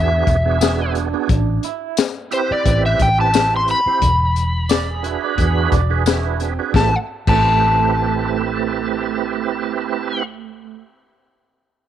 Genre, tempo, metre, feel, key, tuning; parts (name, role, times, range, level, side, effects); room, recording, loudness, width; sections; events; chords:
straight-eighth soul blues; 88 BPM; 4/4; swing 56% on 16ths; A dorian; A4 = 440 Hz
overdriven slide guitar; melody; 0.0-10.2 s; C5 to C6; -19 LUFS; left 1 dB; slapback echo
tonewheel organ; accompaniment; 0.0-10.2 s; B3 to C5; -23 LUFS; right 11 dB; slow rotary speaker, overdrive, chorus vibrato
vintage muted fingered electric bass; bass; 0.0-10.8 s; E1 to E2; -20 LUFS; equal
crunchy breakbeat drum kit; drums; 0.3-7.4 s; crash cymbal, hi-hat, kick drum, snare drum, tambourine; -20 LUFS; left 4 dB
electric guitar through a small old amp; second line; 0.6-10.8 s; A3 to D5; -26 LUFS; right 14 dB; tremolo
light reverb, studio reverb; 1960s-style stereo; -15 LUFS; side -10 dB against mid
0.0-6.7 A section; 6.7-9.5 B section
0.0 E7; 1.3 Am7; 4.0 E7; 6.7 Am7